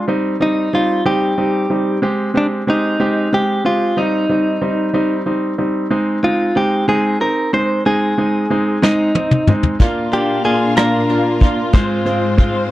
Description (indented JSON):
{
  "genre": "six-eight pop ballad",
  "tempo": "62 BPM (dotted quarters)",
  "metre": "6/8",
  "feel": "straight",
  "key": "unclear",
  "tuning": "A4 = 440 Hz",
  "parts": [
    { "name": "direct-recorded clean electric guitar", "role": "melody", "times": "0.0-12.7 s", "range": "D4 to C5", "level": "-18 LUFS", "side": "equal", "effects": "spring reverb" },
    { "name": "clear concert grand piano", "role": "accompaniment", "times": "0.0-12.6 s", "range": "G3 to G4", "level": "-17 LUFS", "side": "right 1 dB", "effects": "none" },
    { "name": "soft brush drum kit", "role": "drums", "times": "8.8-12.5 s", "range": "hi-hat, kick drum, rim click, snare drum, toms", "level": "-13 LUFS", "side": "equal", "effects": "none" },
    { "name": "warm studio string section", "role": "sustained chords", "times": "9.8-12.7 s", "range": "Ab2 to F5", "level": "-20 LUFS", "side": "left 2 dB", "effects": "none" },
    { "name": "twelve-string electric guitar", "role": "arpeggios", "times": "9.8-12.7 s", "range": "Ab3 to F4", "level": "-23 LUFS", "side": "left 5 dB", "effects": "ensemble chorus" }
  ],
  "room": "little or no reverb",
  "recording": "dry, close 1970s-style studio recording",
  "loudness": "-14 LUFS",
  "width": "side -15 dB against mid",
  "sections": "0.0-5.9 A section; 5.9-12.7 B section",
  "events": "drum fill 8.8-9.8",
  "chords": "0.1 Cm; 2.0 Abmaj7; 4.0 Cm; 5.9 Ab; 9.8 Bb; 11.7 Fm/Ab"
}